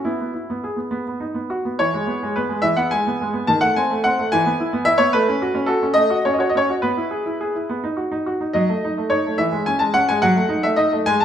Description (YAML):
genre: classical-period piano sonatina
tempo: 71 BPM (dotted quarters)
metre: 6/8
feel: straight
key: E major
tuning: A4 = 440 Hz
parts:
  - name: bright baby grand piano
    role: solo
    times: 0.0-11.2 s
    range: D#3 to A5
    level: -17 LUFS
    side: equal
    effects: none
room: wet recital hall reverb, RT60 1.7 s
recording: minimal, uncompressed stereo recording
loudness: -18 LUFS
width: side -9 dB against mid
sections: 0.0-1.8 A section; 1.8-11.2 B section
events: none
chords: 0.1 E/B; 0.9 B; 1.8 E; 3.5 D#dim7; 4.3 E; 5.1 F#m/A; 6.8 E/B; 7.7 B; 8.5 D#dim/F#; 9.4 C#m/E; 10.2 D#dim/F#